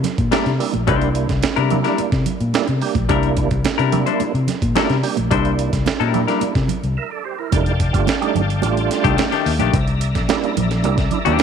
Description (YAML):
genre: funk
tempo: 108 BPM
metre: 4/4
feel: straight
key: C mixolydian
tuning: A4 = 440 Hz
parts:
  - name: vintage muted fingered electric bass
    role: bass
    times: 0.0-11.4 s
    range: F1 to C3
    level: -20 LUFS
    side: left 1 dB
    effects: none
  - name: breakbeat sampler-style drum kit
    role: drums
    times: 0.0-11.4 s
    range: hi-hat, kick drum, snare drum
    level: -22 LUFS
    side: right 2 dB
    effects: none
  - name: congas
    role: percussion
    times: 0.0-11.4 s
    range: none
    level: -27 LUFS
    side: right 11 dB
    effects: none
  - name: semi-hollow electric guitar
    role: accompaniment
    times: 0.3-11.4 s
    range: Eb3 to C5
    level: -22 LUFS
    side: left 14 dB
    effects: none
  - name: percussive tonewheel organ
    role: stabs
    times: 0.3-11.4 s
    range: G3 to E5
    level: -24 LUFS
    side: right 8 dB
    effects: overdrive, chorus vibrato, fast rotary speaker
  - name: overdriven tonewheel organ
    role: sustained chords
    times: 7.5-11.4 s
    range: D5 to Bb5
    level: -27 LUFS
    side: left 2 dB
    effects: slow rotary speaker, chorus vibrato
room: light reverb, digital ambience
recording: 1960s-style stereo with parts hard left and right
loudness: -16 LUFS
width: side -7 dB against mid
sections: 0.0-7.5 A section; 7.5-11.4 B section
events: break 7.0-7.5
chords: 0.0 C9; 7.5 F13; 9.7 C9